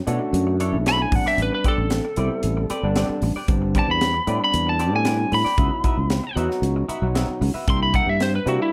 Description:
electric jazz fusion; 114 BPM; 4/4; straight; A4 = 439 Hz
overdriven tine electric piano; accompaniment; 0.1-8.7 s; F#3 to F#4; -30 LUFS; equal; subtle chorus
semi-hollow electric guitar; stabs; 0.1-8.6 s; C4 to E5; -35 LUFS; equal; subtle chorus
sustaining fretless electric bass; bass; 0.1-8.6 s; G1 to C3; -26 LUFS; equal; lush chorus
crisp fusion drum kit; drums; 0.1-8.6 s; hi-hat, kick drum, snare drum; -27 LUFS; equal
lightly driven lead guitar; melody; 0.9-8.7 s; E4 to C6; -25 LUFS; equal; slapback echo
moderate club reverb, RT60 0.6 s; -21 LUFS; mono
0.0-8.7 A section
lead electric guitar solo 0.0-8.7
0.0 Bm11; 1.1 Am11; 5.6 C#m11; 7.7 C7
0.34 0.87 | 1.39 1.92 2.44 2.96 | 3.49 4.01 4.54 5.06 | 5.59 6.11 6.63 7.16 | 7.68 8.21

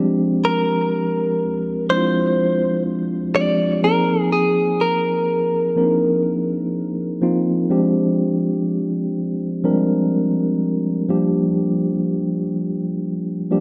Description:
contemporary R&B; 62 BPM; 4/4; swing 54% on 16ths; F dorian; A4 = 440 Hz
mellow tine electric piano; accompaniment; 0.0-13.6 s; F3 to Bb4; -21 LUFS; equal
direct-recorded clean electric guitar; melody; 0.4-6.2 s; Ab4 to D5; -22 LUFS; equal; tape echo
moderate lush hall reverb, RT60 3.0 s; -20 LUFS; mono
0.0-13.6 A section
0.0 Fm69; 3.8 Bb9sus4; 7.7 Fm69; 11.1 Gm7
0.93 1.89 2.86 | 3.83 4.80 5.76 6.73 | 7.70 8.67 9.64 10.60 | 11.57 12.54 13.51

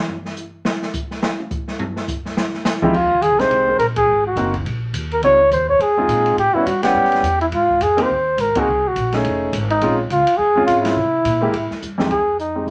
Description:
jazz, small-group swing and bop; 209 BPM; 4/4; swing 59% on 8ths; F minor; A4 = 441 Hz
open jazz drum kit; drums; 0.1-12.7 s; crash cymbal, hi-hat, kick drum, ride cymbal, snare drum, toms; -28 LUFS; equal
breathy flugelhorn; melody; 2.8-12.7 s; Eb4 to Db5; -18 LUFS; equal
clear concert grand piano; accompaniment; 2.8-12.7 s; F2 to F#5; -23 LUFS; equal
upright bass; bass; 2.9-12.7 s; F1 to C3; -28 LUFS; equal
moderate studio ambience, RT60 0.5 s; -18 LUFS; mono
0.0-2.9 A section; 2.9-12.1 B section
drum solo 0.0-2.9; band accent 3.9, 6.8, 8.5, 10.8; drum fill 11.8
0.0 N.C.; 2.4 C5; 2.9 Fm9; 4.1 Ab9; 5.2 Dbmaj9#11; 6.4 A13; 7.5 Abadd9; 8.7 Cm7b5; 9.2 F7alt; 9.8 Bbm9; 11.0 C7b13; 12.1 Fm9
0.08 0.37 | 0.65 0.94 1.22 1.51 | 1.79 2.08 2.37 2.65 | 2.94 3.23 3.51 3.80 | 4.08 4.37 4.66 4.94 | 5.23 5.52 5.80 6.09 | 6.38 6.66 6.95 7.24 | 7.52 7.81 8.10 8.38 | 8.67 8.96 9.24 9.53 | 9.82 10.10 10.39 10.68 | 10.96 11.25 11.54 11.82 | 12.11 12.40 12.68

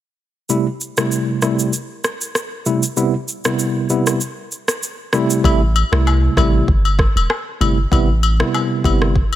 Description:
afrobeats; 97 BPM; 4/4; swing 55% on 16ths; A minor; A4 = 439 Hz
barky tine electric piano; accompaniment; 0.5-9.1 s; C3 to E4; -18 LUFS; equal; medium stereo tremolo
afro-pop drum kit; drums; 0.5-9.3 s; kick drum, rim click, shaker; -20 LUFS; equal; overdrive
punchy sub bass; bass; 5.4-9.2 s; E1 to C2; -16 LUFS; equal
agogo bells and woodblock; percussion; 5.5-9.4 s; -23 LUFS; left 7 dB
digital ambience; -15 LUFS; side -12 dB against mid
0.5-5.4 A section; 5.4-9.4 B section
break 4.2-5.4; hi-hats muted 5.4-9.4
0.5 Am7; 3.0 Cmaj7; 5.1 Am7; 7.9 Cmaj7
| 0.49 1.11 1.73 2.35 | 2.97 3.59 4.21 4.83 | 5.44 6.06 6.68 7.30 | 7.92 8.54 9.15

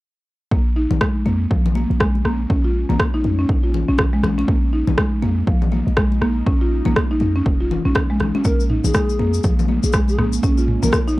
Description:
afro house; 121 BPM; 4/4; swing 59% on 16ths; Bb minor; A4 = 440 Hz
ethereal airy pad; sustained chords; 1.5-11.2 s; Ab3 to Eb4; -30 LUFS; right 1 dB; ensemble chorus, built-in reverb, phaser, sidechain pumping, cassette tape
buzzing marimba with soft mallets; arpeggios; 0.5-11.2 s; F3 to F4; -22 LUFS; right 1 dB; sidechain pumping, cassette tape, analog delay
warm 808-style bass; bass; 0.5-11.2 s; F1 to F2; -21 LUFS; equal; sidechain pumping
electronic kick drum; drums; 0.5-11.0 s; -20 LUFS; equal; overdrive
congas; percussion; 0.9-11.0 s; -27 LUFS; left 6 dB
afro-pop drum kit; drums; 1.0-11.0 s; rim click, toms; -21 LUFS; equal
mellow hollow polished pan flute; melody; 8.4-11.0 s; Ab4 to Bb4; -26 LUFS; left 1 dB; cassette tape, analog delay
cabasa; percussion; 8.4-11.2 s; -32 LUFS; left 10 dB
light reverb; home recording on cassette; -16 LUFS; side -18 dB against mid
0.5-11.2 A section
0.5 Bbm7
| 0.52 1.01 1.51 2.00 | 2.50 3.00 3.49 3.99 | 4.48 4.98 5.47 5.97 | 6.47 6.96 7.46 7.95 | 8.45 8.95 9.44 9.94 | 10.43 10.93

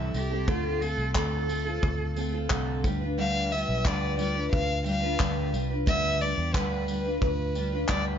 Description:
acoustic pop; 89 BPM; 4/4; straight; A4 = 436 Hz
warm violin; melody; 0.0-8.0 s; B4 to F5; -30 LUFS; left 1 dB
picked steel-string acoustic guitar; accompaniment; 0.0-8.2 s; A2 to B4; -30 LUFS; equal; double-tracked left and right
vintage muted fingered electric bass; bass; 0.0-8.2 s; B1 to E2; -31 LUFS; equal
clear cello; second line; 0.1-2.5 s; F4 to A4; -34 LUFS; right 3 dB; digital delay
modern studio drum kit; drums; 0.1-8.0 s; handclaps, kick drum, tambourine; -31 LUFS; equal
light reverb; nothing above 7.5 kHz; -25 LUFS; side -8 dB against mid
0.0-8.2 A section
0.5 Dm7; 2.8 G7
| 0.48 1.16 1.83 2.50 | 3.18 3.85 4.53 5.20 | 5.87 6.54 7.22 7.89

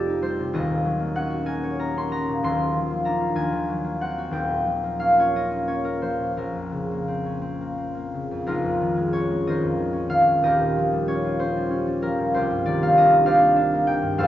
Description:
classical, solo harp piece; 56-66 BPM (dotted quarters); 6/8; rubato; Bb dorian; A4 = 440 Hz
concert harp; solo; 0.0-14.3 s; Eb1 to C6; -20 LUFS; equal
wet recital hall reverb, RT60 1.6 s; nothing above 7.5 kHz; -20 LUFS; side -12 dB against mid
0.0-8.5 A section; 8.5-14.3 B section
0.0 F9; 0.6 Ebm7; 2.4 Cm11/Eb; 3.4 Ab9/Eb; 4.3 Eb9; 6.4 Bbmadd9; 8.5 Bbm11; 10.4 Eb9; 12.3 Cm11
| 0.56 1.50 | 2.44 3.37 | 4.32 5.33 | 6.36 7.41 | 8.45 9.44 | 10.42 11.39 | 12.34 13.27 | 14.20

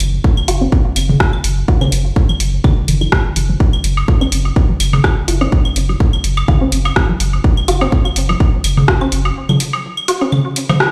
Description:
minimal techno; 125 BPM; 4/4; swing 54% on 16ths; A4 = 440 Hz
round analog bass; bass; 0.0-9.3 s; F#1; -19 LUFS; equal; sidechain pumping
house drum kit; drums; 0.0-10.9 s; hi-hat, rim click; -20 LUFS; equal
electronic claves, toms and woodblock; percussion; 0.0-10.8 s; -21 LUFS; equal; delay
electronic kick drum; drums; 0.2-9.0 s; -15 LUFS; equal
resonant blip pluck; riff; 0.5-10.7 s; E3 to F#4; -23 LUFS; equal; analog chorus, sidechain pumping, delay
moderate studio reverb, RT60 0.6 s; played on a big sound system in a bare room, stone room reverb; -14 LUFS; mono
0.0-10.9 A section
filter sweep on synth arpeggio sound 0.0-10.9
0.0 F#5
0.24 0.72 1.20 | 1.68 2.16 2.64 3.12 | 3.60 4.08 4.56 5.04 | 5.52 6.00 6.48 6.96 | 7.44 7.92 8.40 8.88 | 9.36 9.84 10.32 10.80

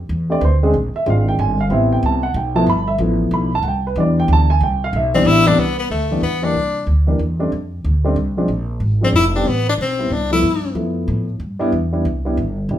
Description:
jazz, small-group swing and bop; 186 BPM; 3/4; swing 62% on 8ths; C major; A4 = 440 Hz
upright bass; bass; 0.0-12.8 s; F1 to A2; -19 LUFS; equal
dark baby grand piano; accompaniment; 0.3-12.8 s; C2 to B5; -18 LUFS; equal
clear tenor saxophone; melody; 5.1-6.9, 9.0-10.7 s; A3 to E4; -17 LUFS; left 3 dB; plate reverb
wet studio reverb, RT60 0.6 s; heard from further back in the room; -15 LUFS; side -11 dB against mid
0.0-5.6 A section; 5.6-12.8 B section
0.0 F69 (rootless); 0.7 Bb9; 1.7 Am9; 2.7 G13; 3.6 Cmaj7; 6.5 Cadd9; 7.5 F5; 8.5 Bb7sus2; 9.5 Amadd9; 10.4 G13; 11.4 Cmaj7
0.09 0.41 | 0.73 1.06 1.38 | 1.70 2.03 2.35 | 2.67 2.99 3.32 | 3.64 3.96 4.28 | 4.61 4.93 5.25 | 5.58 5.90 6.22 | 6.54 6.87 7.19 | 7.51 7.84 8.16 | 8.49 8.81 9.13 | 9.46 9.78 10.10 | 10.43 10.75 11.07 | 11.40 11.72 12.04 | 12.37 12.69

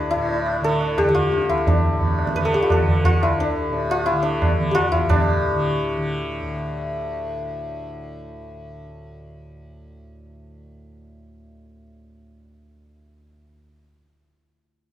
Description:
indian classical, Hindustani; 175 BPM; 5/4; straight; D raga kafi; A4 = 445 Hz
santur; melody; 0.0-8.8 s; D4 to B4; -22 LUFS; left 1 dB
tanpura; drone; 0.0-13.6 s; D2 to D3; -29 LUFS; equal
tabla; percussion; 0.1-5.2 s; -22 LUFS; right 1 dB
moderate recital hall reverb, RT60 1.7 s; close, detailed microphones; -19 LUFS; side -12 dB against mid
0.0-5.1 A section; 5.1-6.8 B section
0.29 0.63 0.98 1.32 | 1.67 2.02 2.36 2.70 3.05 | 3.39 3.73 4.07 4.42 4.76 | 5.10 5.44 5.78 6.12 6.45

